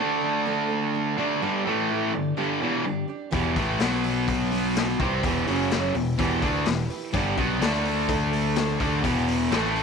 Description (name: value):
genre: classic rock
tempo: 126 BPM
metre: 4/4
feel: straight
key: E dorian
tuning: A4 = 440 Hz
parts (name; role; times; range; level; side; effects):
- picked steel-string acoustic guitar; accompaniment; 0.0-9.8 s; B2 to D5; -33 LUFS; right 9 dB; none
- distorted electric guitar; riff; 0.0-9.8 s; E2 to D4; -27 LUFS; left 13 dB; distortion
- distorted electric guitar; riff; 0.0-9.8 s; E2 to D4; -26 LUFS; right 10 dB; distortion
- growling picked electric bass; bass; 3.3-9.8 s; E1 to D2; -30 LUFS; left 1 dB; overdrive
- raw garage drum kit; drums; 3.3-9.8 s; hi-hat, kick drum, snare drum; -29 LUFS; left 4 dB; none
room: light reverb, small room ambience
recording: 1960s-style stereo with parts hard left and right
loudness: -22 LUFS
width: side -5 dB against mid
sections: 0.0-9.8 A section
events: none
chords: 0.0 D5; 1.2 G5; 1.7 A5; 2.1 G5; 3.3 Em; 3.8 B5; 5.0 Em; 5.5 F#5; 5.9 Em; 7.1 G5; 7.6 D5; 8.8 G5; 9.0 E5